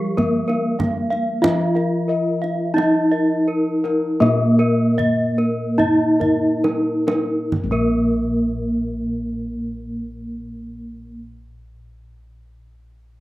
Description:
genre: Javanese gamelan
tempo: 33-50 BPM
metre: 4/4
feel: straight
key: unclear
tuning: A4 = 440 Hz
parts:
  - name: gamelan-type bronze metallophone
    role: melody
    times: 0.0-11.2 s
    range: G3+20c to F4-40c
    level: -20 LUFS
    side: equal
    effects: slapback echo
  - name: gamelan-type bronze metallophone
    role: accompaniment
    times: 0.0-11.2 s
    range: F3-40c to Bb3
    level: -24 LUFS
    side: equal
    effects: slapback echo
  - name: gamelan-type bronze metallophone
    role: arpeggios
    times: 0.0-11.2 s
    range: G4+20c to F5-40c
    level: -27 LUFS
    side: right 2 dB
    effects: slapback echo
  - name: gamelan-type bossed gongs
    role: bass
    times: 0.0-11.1 s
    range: Bb1 to F4-40c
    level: -28 LUFS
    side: left 1 dB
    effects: none
  - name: gamelan-type bossed gongs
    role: arpeggios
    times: 0.2-11.2 s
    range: Bb4 to F5-40c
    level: -26 LUFS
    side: left 4 dB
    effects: none
  - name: kendang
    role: percussion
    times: 0.2-8.4 s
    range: none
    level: -26 LUFS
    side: right 2 dB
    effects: none
room: little or no reverb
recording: recorded outdoors, with no room sound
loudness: -17 LUFS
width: side -16 dB against mid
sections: 0.0-7.5 A section; 7.5-13.2 B section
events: slowing down 0.0-7.5; drum fill 6.2-7.5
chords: none

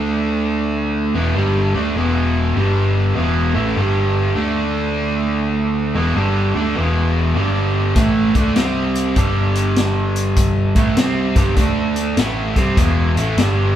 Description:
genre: blues rock power trio and southern rock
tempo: 100 BPM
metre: 4/4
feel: swing 65% on 8ths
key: unclear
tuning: A4 = 438 Hz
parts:
  - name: overdriven electric guitar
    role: riff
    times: 0.0-13.8 s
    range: E2 to D4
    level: -18 LUFS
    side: right 1 dB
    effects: none
  - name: overdriven picked electric bass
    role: bass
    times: 0.0-13.8 s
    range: E1 to D2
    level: -20 LUFS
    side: equal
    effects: none
  - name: vintage drum kit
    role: drums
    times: 8.0-13.6 s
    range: hi-hat, kick drum, snare drum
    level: -19 LUFS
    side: left 1 dB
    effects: none
room: moderate studio reverb, RT60 0.9 s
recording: band playing live in one room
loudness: -15 LUFS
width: side -10 dB against mid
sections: 0.0-13.8 A section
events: none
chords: 0.0 D5; 1.1 E5; 2.6 G5; 3.2 E5; 3.8 G5; 4.4 D5; 5.9 E5; 7.4 G5; 8.0 A5; 8.6 C5; 9.2 G5; 10.7 A5; 11.6 D5; 12.2 A5; 12.8 E5

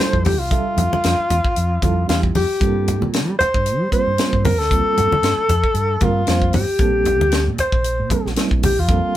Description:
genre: electric jazz fusion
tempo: 115 BPM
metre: 4/4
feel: swing 56% on 16ths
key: unclear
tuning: A4 = 440 Hz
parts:
  - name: dark alto saxophone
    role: melody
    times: 0.0-9.2 s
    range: F4 to C5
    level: -19 LUFS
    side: left 1 dB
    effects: none
  - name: mellow reed electric piano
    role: accompaniment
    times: 0.0-9.2 s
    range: G3 to E5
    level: -24 LUFS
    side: right 6 dB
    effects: fast tremolo
  - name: tight funk drum kit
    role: drums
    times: 0.0-9.2 s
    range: hi-hat, kick drum, snare drum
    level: -21 LUFS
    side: equal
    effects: none
  - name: fretless electric bass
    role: bass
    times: 0.1-9.0 s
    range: Bb1 to G3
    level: -21 LUFS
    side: equal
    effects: none
  - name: congas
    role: percussion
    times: 0.3-8.8 s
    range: none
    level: -22 LUFS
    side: left 1 dB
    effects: none
room: moderate studio reverb, RT60 0.5 s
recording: band playing live in one room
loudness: -15 LUFS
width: side -13 dB against mid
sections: 0.0-9.2 A section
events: none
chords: 0.0 Fmaj13; 2.6 Gm11; 6.8 Bbmaj13

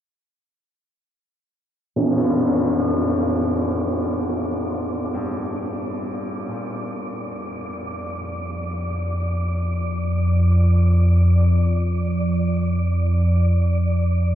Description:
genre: dark ambient drone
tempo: free time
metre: none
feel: none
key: unclear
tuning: A4 = 440 Hz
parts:
  - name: analog drone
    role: drone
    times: 2.2-14.3 s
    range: F2 to F3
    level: -19 LUFS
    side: equal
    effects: chorus
  - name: tam-tam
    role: percussion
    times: 2.0-2.1 s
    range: none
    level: -23 LUFS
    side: equal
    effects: low-pass filter on cymbals
  - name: wind-like tuned noise texture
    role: texture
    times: 2.8-14.3 s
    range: D5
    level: -33 LUFS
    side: left 1 dB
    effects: built-in reverb
  - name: warm grand piano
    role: arpeggios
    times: 4.7-11.8 s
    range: G2 to F4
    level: -37 LUFS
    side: left 1 dB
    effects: diffuse ambient delay
room: wet cathedral reverb, RT60 6.9 s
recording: dark, warm production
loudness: -19 LUFS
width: side -11 dB against mid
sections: 2.0-14.3 A section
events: fade-in on synth texture 2.0-14.3; fade-in on grand piano 2.0-14.3; filter sweep on synth drone 2.0-14.3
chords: 2.0 Bb6/F; 9.2 Bb

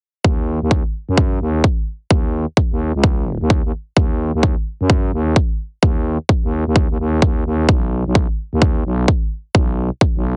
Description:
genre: bass house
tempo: 129 BPM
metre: 4/4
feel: swing 62% on 16ths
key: Eb minor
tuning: A4 = 440 Hz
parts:
  - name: growling FM bass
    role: bass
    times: 0.2-10.4 s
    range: B1 to Gb2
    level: -21 LUFS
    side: equal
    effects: overdrive, sidechain pumping
  - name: electronic kick drum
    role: drums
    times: 0.2-10.1 s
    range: none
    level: -18 LUFS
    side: equal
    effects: overdrive
room: little or no reverb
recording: heavily compressed radio sound, nothing above 10.6 kHz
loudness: -18 LUFS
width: mono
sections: 0.2-10.4 A section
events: none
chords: none

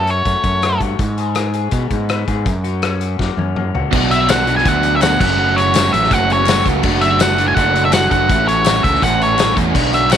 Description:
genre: indie rock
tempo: 165 BPM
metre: 4/4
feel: straight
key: F# dorian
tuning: A4 = 442 Hz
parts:
  - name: octave-fuzz lead guitar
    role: melody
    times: 0.0-0.8, 4.1-10.2 s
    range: C#5 to G#5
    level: -16 LUFS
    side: equal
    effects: distortion, tape echo
  - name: electric guitar through a small old amp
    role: riff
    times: 0.0-10.2 s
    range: F#2 to G#4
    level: -22 LUFS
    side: left 15 dB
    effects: lush chorus
  - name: growling fingered electric bass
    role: bass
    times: 0.0-10.2 s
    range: F#1 to B2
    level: -20 LUFS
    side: right 1 dB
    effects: overdrive
  - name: loose indie drum kit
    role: drums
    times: 0.1-10.2 s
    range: crash cymbal, hi-hat, kick drum, rim click, snare drum, tambourine, toms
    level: -19 LUFS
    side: left 2 dB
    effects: none
  - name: biting overdriven guitar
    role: riff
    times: 3.9-10.2 s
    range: A2 to F#4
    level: -19 LUFS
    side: right 13 dB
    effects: lush chorus
  - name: group handclap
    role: percussion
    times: 4.3-10.2 s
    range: none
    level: -30 LUFS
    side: left 14 dB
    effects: none
room: light reverb, studio reverb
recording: 1960s-style stereo with parts hard left and right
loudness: -13 LUFS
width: side -9 dB against mid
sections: 0.0-3.9 A section; 3.9-10.2 B section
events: drum fill 3.2-3.9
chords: 0.0 F#m; 1.0 G#m; 2.5 F#; 3.9 Bm; 5.2 F#m; 6.8 D/F#; 8.3 A6

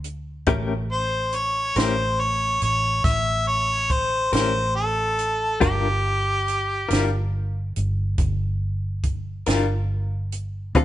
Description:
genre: slow blues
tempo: 47 BPM (dotted quarters)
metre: 12/8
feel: straight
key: unclear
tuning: A4 = 440 Hz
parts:
  - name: vintage muted fingered electric bass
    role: bass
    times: 0.0-10.8 s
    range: G1 to D2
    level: -26 LUFS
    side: equal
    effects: none
  - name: compact cocktail drum kit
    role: drums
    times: 0.0-10.8 s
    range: hi-hat, kick drum, snare drum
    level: -25 LUFS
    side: right 1 dB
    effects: none
  - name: direct-recorded clean electric guitar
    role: accompaniment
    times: 0.5-10.8 s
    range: D3 to Bb4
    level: -24 LUFS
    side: left 4 dB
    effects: tremolo
  - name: bright harmonica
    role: melody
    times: 0.9-7.3 s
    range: G4 to E5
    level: -22 LUFS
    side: equal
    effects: overdrive
room: moderate stone room reverb, RT60 1.4 s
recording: band playing live in one room, nothing above 10.6 kHz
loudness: -20 LUFS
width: side -13 dB against mid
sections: 0.0-10.8 A section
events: none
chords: 0.5 A7b9; 5.6 Gm7

